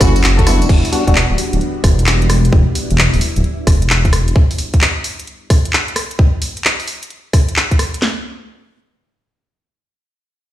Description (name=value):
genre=UK garage, two-step garage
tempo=131 BPM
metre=4/4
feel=swing 66% on 16ths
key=E dorian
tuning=A4 = 441 Hz
part: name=bright studio violin section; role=melody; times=0.0-0.6 s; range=F#4 to B4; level=-24 LUFS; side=left 1 dB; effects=ping-pong delay
part: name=soft string machine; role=sustained chords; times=0.0-4.3 s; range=G3 to F#4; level=-25 LUFS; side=equal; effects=ensemble chorus, sidechain pumping
part: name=percussive organ stab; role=stabs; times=0.0-1.1 s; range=G3 to F#4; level=-18 LUFS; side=left 1 dB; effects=lush chorus, ping-pong delay
part: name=dark detuned saw bass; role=bass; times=0.0-4.3 s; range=D1 to F#1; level=-14 LUFS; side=equal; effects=tube saturation
part: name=garage drum kit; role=drums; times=0.0-8.2 s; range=kick drum, snare drum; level=-12 LUFS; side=equal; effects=none
part: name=garage drum kit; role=drums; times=0.0-8.0 s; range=crash cymbal, handclaps, hi-hat, rim click, tambourine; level=-17 LUFS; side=equal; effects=none
room=light reverb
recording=played on a big sound system in a bare room, stone room reverb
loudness=-12 LUFS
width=side -13 dB against mid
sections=0.7-8.0 A section; 8.0-10.5 B section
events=none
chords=0.0 F#m7; 0.7 Em9; 4.4 N.C.